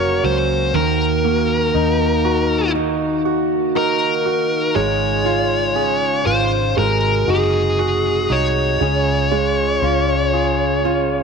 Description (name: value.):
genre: pop ballad.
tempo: 59 BPM.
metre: 4/4.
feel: straight.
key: Db major.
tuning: A4 = 440 Hz.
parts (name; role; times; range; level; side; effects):
high-gain lead guitar; melody; 0.0-11.2 s; Ab4 to Db5; -19 LUFS; left 3 dB; distortion.
clear concert grand piano; accompaniment; 0.0-11.2 s; Db3 to Bb4; -21 LUFS; right 11 dB; none.
dark brass ensemble; sustained chords; 0.0-11.2 s; C3 to Gb4; -27 LUFS; right 12 dB; none.
fingerpicked plugged-in steel-string acoustic guitar; arpeggios; 0.0-11.2 s; Ab2 to Bb4; -23 LUFS; left 13 dB; none.
vintage muted fingered electric bass; bass; 0.0-11.2 s; F1 to Eb2; -23 LUFS; equal; none.
room: moderate spring reverb, RT60 1.7 s.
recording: 1960s-style stereo with parts hard left and right.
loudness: -15 LUFS.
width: side -5 dB against mid.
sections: 0.0-11.2 A section.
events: none.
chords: 0.0 Gb; 0.7 Ebm; 4.8 Db/Ab; 6.8 Ab7; 8.8 Db.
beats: | 0.74 1.75 2.75 3.75 | 4.75 5.76 6.77 7.79 | 8.80 9.82 10.85.